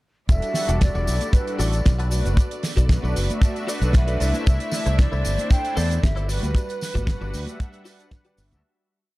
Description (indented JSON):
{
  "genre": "nu-disco, nu disco",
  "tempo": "115 BPM",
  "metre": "4/4",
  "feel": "straight",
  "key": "E minor",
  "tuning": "A4 = 440 Hz",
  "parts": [
    { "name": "mellow hollow concert flute", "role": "melody", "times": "0.3-8.1 s", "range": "B4 to G5", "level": "-30 LUFS", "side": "right 1 dB", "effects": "digital delay" },
    { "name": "warm analog pad", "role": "accompaniment", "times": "0.3-8.6 s", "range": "G3 to F#5", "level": "-32 LUFS", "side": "equal", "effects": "chorus, sidechain pumping" },
    { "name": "rich symphonic string section", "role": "sustained chords", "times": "0.3-8.6 s", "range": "G3 to F#5", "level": "-37 LUFS", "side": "right 1 dB", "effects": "sidechain pumping" },
    { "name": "modern bright fingered electric bass", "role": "bass", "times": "0.3-8.6 s", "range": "E1 to E2", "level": "-23 LUFS", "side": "equal", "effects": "none" },
    { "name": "damped 70s drum kit", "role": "drums", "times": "0.3-8.6 s", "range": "cabasa, hi-hat, snare drum", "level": "-30 LUFS", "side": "right 1 dB", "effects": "none" },
    { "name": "kick drum", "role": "drums", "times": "0.3-8.2 s", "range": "none", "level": "-18 LUFS", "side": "equal", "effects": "none" },
    { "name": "tambourine and congas", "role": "percussion", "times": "0.3-8.6 s", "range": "none", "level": "-36 LUFS", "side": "equal", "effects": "none" },
    { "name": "direct-recorded clean electric guitar", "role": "riff", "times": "0.7-8.6 s", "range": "E4 to A5", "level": "-35 LUFS", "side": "left 3 dB", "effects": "ensemble chorus" }
  ],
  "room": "light reverb",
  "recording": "dark, warm production",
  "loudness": "-19 LUFS",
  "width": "side -19 dB against mid",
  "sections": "0.3-8.6 drop",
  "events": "drop 0.3-8.6; clean electric guitar fill 3.4-4.5; fade-out 5.9-8.6",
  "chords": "0.3 Em11; 2.1 Bm7; 4.2 C69; 6.3 Gmaj7"
}